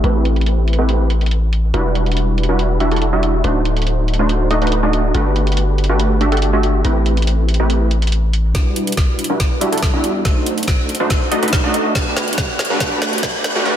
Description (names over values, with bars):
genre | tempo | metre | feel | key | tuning
future bass | 141 BPM | 4/4 | half-time | E minor | A4 = 440 Hz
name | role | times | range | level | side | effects
supersaw stab | riff | 0.0-13.8 s | G3 to E5 | -18 LUFS | right 1 dB | sidechain pumping, low-pass filter, ping-pong delay
long sustained 808-style bass | bass | 0.0-13.6 s | D1 to E2 | -18 LUFS | equal | sidechain pumping, high-pass filter
trap drum kit | drums | 0.0-13.5 s | hi-hat, snare drum | -22 LUFS | equal | low-pass filter on hats, soft clipping on snare, low-pass filter on snare
electronic kick drum | drums | 8.5-13.3 s | none | -18 LUFS | equal | none
room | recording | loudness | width
light reverb, digital ambience | dense, heavily limited modern master, high-pass filter | -14 LUFS | side -10 dB against mid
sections
0.0-8.5 A section; 8.5-13.8 B section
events
build-up 8.5-13.8; drum fill 8.5-13.7; filter sweep on supersaw synth 8.5-13.8; filter sweep 8.5-13.8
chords
0.0 Am9; 1.7 Em9; 3.4 D7b9; 5.1 Gmaj9; 6.8 Am9; 8.5 Em9; 10.2 D7b9; 12.0 Gmaj9